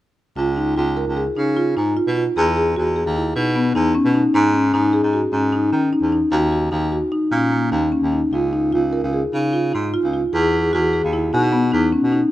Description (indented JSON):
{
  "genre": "contemporary instrumental, chamber music in an uneven meter",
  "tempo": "151 BPM",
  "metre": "5/4",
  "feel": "straight",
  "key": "unclear",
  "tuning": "A4 = 440 Hz",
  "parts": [
    { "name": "marimba with medium mallets", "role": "arpeggios", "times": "0.4-12.3 s", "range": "A#3 to A#4", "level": "-18 LUFS", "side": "left 1 dB", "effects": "none" },
    { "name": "warm baritone saxophone", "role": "bass", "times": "0.4-12.2 s", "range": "C#2 to D#3", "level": "-20 LUFS", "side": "right 1 dB", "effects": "none" }
  ],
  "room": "moderate recital hall reverb, RT60 1.7 s",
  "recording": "close, detailed microphones",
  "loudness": "-16 LUFS",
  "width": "side -14 dB against mid",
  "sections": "0.4-12.3 A section",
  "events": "none",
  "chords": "0.4 C#; 2.4 Emaj7; 4.3 G#5; 6.3 D#m7; 8.3 C#; 10.3 Emaj7"
}